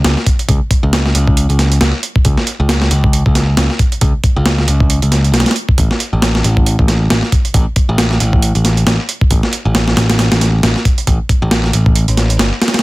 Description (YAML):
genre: breakbeat, breaks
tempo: 136 BPM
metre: 4/4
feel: swing 57% on 16ths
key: unclear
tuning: A4 = 441 Hz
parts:
  - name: modern bright picked electric bass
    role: bass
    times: 0.0-12.5 s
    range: G1 to C#2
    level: -13 LUFS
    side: equal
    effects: none
  - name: dusty soul sampler-style drum kit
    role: drums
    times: 0.0-12.8 s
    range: hi-hat, kick drum, snare drum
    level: -13 LUFS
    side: equal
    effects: overdrive, small room ambience
room: light reverb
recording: dense, heavily limited modern master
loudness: -10 LUFS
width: side -20 dB against mid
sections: 0.0-12.8 A section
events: drop 0.0-12.8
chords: none